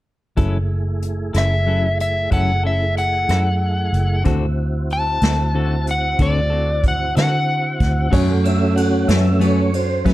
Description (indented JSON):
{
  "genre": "slow blues",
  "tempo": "62 BPM (dotted quarters)",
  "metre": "12/8",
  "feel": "straight",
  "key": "F# minor",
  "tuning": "A4 = 440 Hz",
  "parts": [
    { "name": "clean electric guitar", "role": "accompaniment", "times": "0.4-10.1 s", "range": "F#2 to A4", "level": "-24 LUFS", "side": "left 4 dB", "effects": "harmonic tremolo" },
    { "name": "tonewheel organ", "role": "sustained chords", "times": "0.4-10.1 s", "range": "F#3 to F#5", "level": "-24 LUFS", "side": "right 2 dB", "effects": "chorus vibrato, slow rotary speaker" },
    { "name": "vintage muted fingered electric bass", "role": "bass", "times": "0.4-10.1 s", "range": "F#1 to F#3", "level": "-19 LUFS", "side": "equal", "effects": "none" },
    { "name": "vintage brush drum kit", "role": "drums", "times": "0.4-10.1 s", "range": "crash cymbal, hi-hat, kick drum, ride cymbal, rim click, snare drum", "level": "-22 LUFS", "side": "equal", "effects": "none" },
    { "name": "overdriven slide guitar", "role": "melody", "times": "1.4-8.1 s", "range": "D5 to A5", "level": "-21 LUFS", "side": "left 1 dB", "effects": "none" },
    { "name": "dark grand piano", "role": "accompaniment", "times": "8.1-10.1 s", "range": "C#4 to E5", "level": "-25 LUFS", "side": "right 4 dB", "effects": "none" }
  ],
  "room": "light reverb",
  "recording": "dark, warm production",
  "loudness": "-16 LUFS",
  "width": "side -15 dB against mid",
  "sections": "0.4-8.1 A section; 8.1-10.1 B section",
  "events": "tonewheel organ solo 8.1-10.1",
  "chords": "0.4 F#m7; 4.3 D7; 8.1 F#m",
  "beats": "| 0.38 1.35 2.32 3.29 | 4.26 5.23 6.20 7.17 | 8.13 9.10 10.06"
}